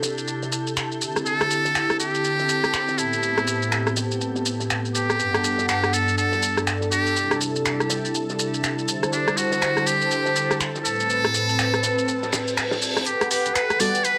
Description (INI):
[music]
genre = deep house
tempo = 122 BPM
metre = 4/4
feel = swing 61% on 16ths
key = A dorian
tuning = A4 = 440 Hz
[part]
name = trumpet with metal mute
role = melody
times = 0.0-14.2 s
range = D4 to D5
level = -26 LUFS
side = equal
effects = cassette tape, analog delay
[part]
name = warm analog pad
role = sustained chords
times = 0.0-14.2 s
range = G2 to F#5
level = -28 LUFS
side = equal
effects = chorus, cassette tape
[part]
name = damped 70s drum kit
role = drums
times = 0.0-13.1 s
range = hi-hat, snare drum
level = -38 LUFS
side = equal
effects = none
[part]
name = punchy analog drum machine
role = drums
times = 0.0-14.2 s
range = finger snaps, hi-hat, rim click, shaker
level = -28 LUFS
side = equal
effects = studio reverb
[part]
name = analog string pad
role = texture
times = 0.0-14.2 s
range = G4 to G6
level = -37 LUFS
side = equal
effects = ensemble chorus, cassette tape
[part]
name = reverse cymbal and riser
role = sound effects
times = 12.3-14.2 s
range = none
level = -32 LUFS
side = equal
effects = none
[part]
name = sub bass with octave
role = bass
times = 13.1-13.9 s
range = D1 to D2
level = -48 LUFS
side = equal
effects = tube saturation, high-pass filter
[part]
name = deep mellow chord stab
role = stabs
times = 13.8-13.9 s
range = G3 to A4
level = -28 LUFS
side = equal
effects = chorus, vintage 12-bit sampler grit, cassette tape
[sound]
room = wet studio ambience, RT60 0.5 s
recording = home recording on cassette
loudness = -23 LUFS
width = mono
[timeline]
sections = 0.0-13.1 A section; 13.1-14.2 B section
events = filter sweep on analog synth pad 0.0-13.1; reverse cymbal 12.3-13.1; build-up 13.1-14.2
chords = 0.0 C69; 1.0 D7sus4; 3.0 Am7; 5.2 Gmaj9; 7.2 C69; 8.9 D7sus4; 10.8 Am7; 13.1 Gmaj9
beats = 0.28 0.77 | 1.26 1.75 2.24 2.73 | 3.23 3.72 4.21 4.70 | 5.19 5.69 6.18 6.67 | 7.16 7.65 8.14 8.64 | 9.13 9.62 10.11 10.60 | 11.10 11.59 12.08 12.57 | 13.06 13.55 14.05